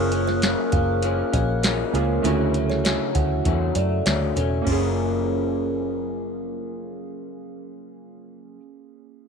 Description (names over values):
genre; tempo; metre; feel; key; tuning
indie pop, bedroom pop; 99 BPM; 4/4; straight; F# major; A4 = 438 Hz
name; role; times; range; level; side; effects
kalimba; second line; 0.0-6.4 s; C#4 to F#5; -30 LUFS; right 11 dB; wide subtle chorus, slapback echo
electric guitar through a small old amp; accompaniment; 0.0-8.6 s; F#2 to C#4; -26 LUFS; left 12 dB; analog chorus, warbly pitch drift
warm analog keys; accompaniment; 0.0-9.3 s; C#3 to G#4; -29 LUFS; right 14 dB; chorus, cassette tape
vintage muted picked electric bass; bass; 0.0-8.6 s; E1 to F#2; -25 LUFS; equal; none
soft vintage rhythm box; drums; 0.1-4.8 s; crash cymbal, hi-hat, kick drum, snare drum; -26 LUFS; equal; none
room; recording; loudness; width
light reverb, digital ambience; 1960s-style stereo with parts hard left and right; -20 LUFS; side -6 dB against mid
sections
0.0-4.7 A section; 4.7-7.1 B section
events
none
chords
0.0 F#maj7; 2.2 Dmaj7; 4.7 F#maj7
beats
0.42 1.03 1.64 | 2.24 2.85 3.46 4.06 | 4.67 5.28 5.88 6.49